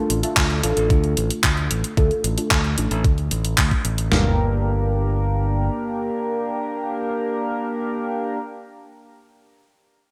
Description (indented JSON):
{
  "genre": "italo disco",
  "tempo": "112 BPM",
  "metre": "4/4",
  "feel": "straight",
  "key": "G minor",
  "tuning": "A4 = 440 Hz",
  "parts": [
    { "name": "chorused polysynth", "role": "stabs", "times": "0.0-8.4 s", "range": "A3 to Bb4", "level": "-27 LUFS", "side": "equal", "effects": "delay" },
    { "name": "modern bright fingered electric bass", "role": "bass", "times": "0.1-5.7 s", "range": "G1 to D2", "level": "-25 LUFS", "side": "equal", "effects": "tube saturation" },
    { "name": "clean 12-bit digital drum machine", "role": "drums", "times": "0.1-4.1 s", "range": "handclaps, hi-hat", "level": "-25 LUFS", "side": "equal", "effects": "overdrive, small room ambience, gated reverb" },
    { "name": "clean 12-bit digital drum machine", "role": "drums", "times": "0.4-4.2 s", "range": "kick drum, snare drum, toms", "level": "-22 LUFS", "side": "equal", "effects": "overdrive, small room ambience, gated reverb" }
  ],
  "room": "moderate plate reverb, RT60 2.0 s",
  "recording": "bright 1980s-style digital production",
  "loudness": "-21 LUFS",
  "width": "mono",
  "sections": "0.0-4.1 A section; 4.1-8.4 B section",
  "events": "filter sweep on analog polysynth 0.0-4.1",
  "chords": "0.0 Dm; 4.1 Gm",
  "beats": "0.37 0.90 1.44 | 1.97 2.51 3.04 3.58 | 4.12 4.65 5.19 5.72 | 6.26 6.79 7.33 7.87"
}